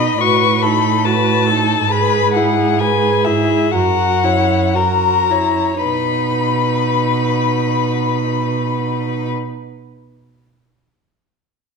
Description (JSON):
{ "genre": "classical, slow romantic movement for string quartet", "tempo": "52-72 BPM", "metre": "4/4", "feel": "rubato", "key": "B major", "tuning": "A4 = 439 Hz", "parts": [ { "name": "muted violin", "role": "melody", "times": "0.0-9.3 s", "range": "E5 to C#6", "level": "-18 LUFS", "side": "left 10 dB", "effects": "none" }, { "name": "muted violin", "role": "second line", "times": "0.0-9.3 s", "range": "G#4 to D#5", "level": "-20 LUFS", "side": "left 5 dB", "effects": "none" }, { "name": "muted viola", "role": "accompaniment", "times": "0.0-9.3 s", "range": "D#4 to G#4", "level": "-20 LUFS", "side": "right 4 dB", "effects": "none" }, { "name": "muted cello", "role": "bass", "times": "0.0-9.3 s", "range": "F#2 to B2", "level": "-20 LUFS", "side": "right 6 dB", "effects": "none" } ], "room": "wet recital hall reverb, RT60 1.4 s", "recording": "none", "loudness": "-13 LUFS", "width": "side -5 dB against mid", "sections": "0.0-5.8 A section; 5.8-10.0 B section", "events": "slowing down 0.0-5.8", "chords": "0.2 B7/A; 1.9 E/G#; 3.7 F#7; 5.8 B", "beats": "0.20 1.04 | 1.90 2.79 3.73 4.75 | 5.84 6.85 7.91 8.96" }